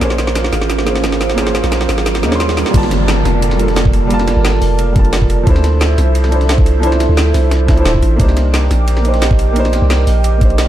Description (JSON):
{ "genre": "liquid drum and bass", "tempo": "176 BPM", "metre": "4/4", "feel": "straight", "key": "unclear", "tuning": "A4 = 441 Hz", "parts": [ { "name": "felt-muted upright piano", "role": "accompaniment", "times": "0.0-10.7 s", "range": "F3 to C6", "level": "-20 LUFS", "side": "left 1 dB", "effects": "digital delay" }, { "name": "airy breathy pad", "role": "sustained chords", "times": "0.0-10.7 s", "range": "Bb3 to D6", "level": "-22 LUFS", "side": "right 2 dB", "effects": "chorus, sidechain pumping" }, { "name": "vibraphone with medium mallets", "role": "arpeggios", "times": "0.0-10.7 s", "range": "E4 to Eb5", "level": "-21 LUFS", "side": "right 7 dB", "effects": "digital delay" }, { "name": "long sustained 808-style bass", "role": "bass", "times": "0.0-10.7 s", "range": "D1 to Eb2", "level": "-14 LUFS", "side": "equal", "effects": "none" }, { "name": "drum and bass drum kit", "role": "drums", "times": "0.0-10.7 s", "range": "crash cymbal, hi-hat, snare drum", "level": "-21 LUFS", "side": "equal", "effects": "overdrive" }, { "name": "dusty soul sampler-style drum kit", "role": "drums", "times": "0.0-10.7 s", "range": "hi-hat, ride cymbal, snare drum", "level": "-27 LUFS", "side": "equal", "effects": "high-pass filter on cymbals, high-pass filter on snare, high-pass filter on hats" }, { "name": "riser and downlifter", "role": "sound effects", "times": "0.0-5.5 s", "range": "none", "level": "-24 LUFS", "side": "equal", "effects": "none" }, { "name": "electronic kick drum", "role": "drums", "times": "2.7-10.5 s", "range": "none", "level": "-13 LUFS", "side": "equal", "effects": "overdrive" } ], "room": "digital ambience", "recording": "dark, warm production, lossy compression artefacts", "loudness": "-11 LUFS", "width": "side -12 dB against mid", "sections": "0.0-2.7 A section; 2.7-10.7 B section", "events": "build-up 0.0-2.7; drum fill 0.0-2.7; riser 0.0-2.7; drop 2.7-10.7", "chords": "0.0 Bbm9; 2.7 Gm9; 5.5 Dm9; 8.2 Cm9", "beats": "| 0.01 0.36 0.70 1.04 | 1.38 1.72 2.06 2.40 | 2.74 3.08 3.42 3.77 | 4.11 4.45 4.79 5.13 | 5.47 5.81 6.15 6.49 | 6.83 7.17 7.51 7.86 | 8.20 8.54 8.88 9.22 | 9.56 9.90 10.24 10.58" }